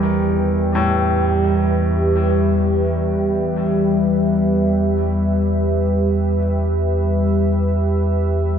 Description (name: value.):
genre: dark ambient drone.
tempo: free time.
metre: none.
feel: none.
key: unclear.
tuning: A4 = 441 Hz.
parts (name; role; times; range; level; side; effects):
dark analog pad; sustained chords; 0.0-8.6 s; G4 to G5; -22 LUFS; right 2 dB; chorus.
bright grand piano; arpeggios; 0.0-8.6 s; A2 to E3; -26 LUFS; left 3 dB; tape echo.
analog drone; drone; 0.0-8.6 s; E2 to G3; -17 LUFS; equal; chorus.
room: wet cathedral reverb, RT60 5.8 s.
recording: none.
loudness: -16 LUFS.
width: side -8 dB against mid.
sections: 0.0-8.6 A section.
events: filter sweep on synth drone 0.0-8.6.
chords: 0.0 Em.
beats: free time.